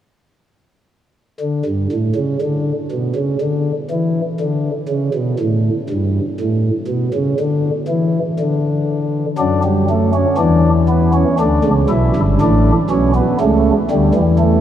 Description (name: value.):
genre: classical, baroque-style 4-part fugue for pipe organ.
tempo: 60 BPM.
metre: 4/4.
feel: straight.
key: D major.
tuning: A4 = 440 Hz.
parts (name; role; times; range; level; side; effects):
pipe organ, flutes; solo; 1.4-14.6 s; G1 to E4; -14 LUFS; equal; none.
room: wet huge ambient reverb, RT60 7.9 s.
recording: in a vast, echoing space.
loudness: -14 LUFS.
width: side -10 dB against mid.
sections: 1.4-9.4 A section; 9.4-14.6 B section.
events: none.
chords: 1.4 N.C.; 9.4 D/F#; 11.4 Em7; 13.4 A7/C#.